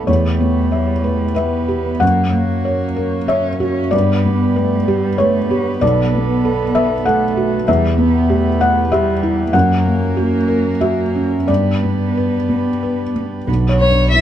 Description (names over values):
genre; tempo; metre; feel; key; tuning
neoclassical piano and strings; 89-97 BPM; 3/4; rubato; B minor; A4 = 438 Hz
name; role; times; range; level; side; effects
warm cello; second line; 0.0-14.2 s; G3 to C#4; -22 LUFS; right 5 dB; none
felt-muted upright piano; accompaniment; 0.0-14.2 s; B1 to F#5; -15 LUFS; left 1 dB; none
hand-pumped harmonium; sustained chords; 0.0-14.2 s; A#3 to C#5; -27 LUFS; right 3 dB; none
warm double bass; bass; 13.5-14.2 s; B1; -17 LUFS; equal; none
warm violin; melody; 13.8-14.2 s; C#5 to E5; -13 LUFS; left 2 dB; none
room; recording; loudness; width
light reverb; dark, warm production; -14 LUFS; side -10 dB against mid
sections
0.0-13.5 A section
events
none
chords
0.1 Em; 2.0 F#; 3.9 G; 5.8 Bm7; 7.7 Em; 9.5 F#; 11.5 G; 13.5 Bmadd9